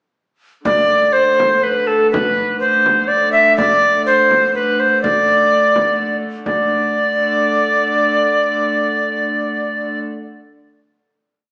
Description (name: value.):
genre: medieval dance.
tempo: 125 BPM.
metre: 3/4.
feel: straight.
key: unclear.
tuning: A4 = 440 Hz.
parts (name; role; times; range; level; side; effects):
alto recorder; melody; 0.7-10.0 s; A4 to E5; -16 LUFS; equal; none.
warm hurdy-gurdy; drone; 0.7-10.0 s; D3 to A3; -27 LUFS; equal; none.
frame drum; percussion; 0.7-6.7 s; none; -29 LUFS; equal; none.
room: wet large studio reverb, RT60 1.4 s.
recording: band playing live in one room, small speaker sound.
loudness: -15 LUFS.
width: mono.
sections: 0.6-6.5 A section; 6.5-9.2 final chord.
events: speeding up 0.6-9.2.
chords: none.